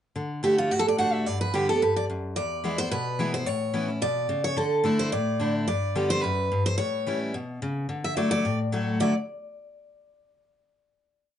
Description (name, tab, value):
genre	bluegrass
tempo	217 BPM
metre	4/4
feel	swing 54% on 8ths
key	D major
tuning	A4 = 440 Hz
part	picked steel-string acoustic guitar	accompaniment	0.2-9.1 s	E2 to G4	-27 LUFS	left 1 dB	none
part	picked steel-string acoustic guitar	melody	0.4-9.1 s	F4 to F#5	-26 LUFS	right 1 dB	none
room	wet studio ambience, RT60 0.5 s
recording	nothing above 10.6 kHz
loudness	-24 LUFS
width	side -10 dB against mid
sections	0.2-9.0 A section; 9.0-10.1 final chord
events	none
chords	0.2 D; 1.3 G; 2.4 E; 3.5 Aadd9; 4.6 Dsus2; 5.7 G; 6.8 A7; 7.9 Dadd9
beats	| 0.16 0.44 0.71 0.99 | 1.27 1.54 1.82 2.09 | 2.37 2.64 2.92 3.19 | 3.47 3.75 4.02 4.30 | 4.57 4.85 5.12 5.40 | 5.68 5.96 6.23 6.51 | 6.79 7.06 7.34 7.62 | 7.89 8.17 8.45 8.73 | 9.00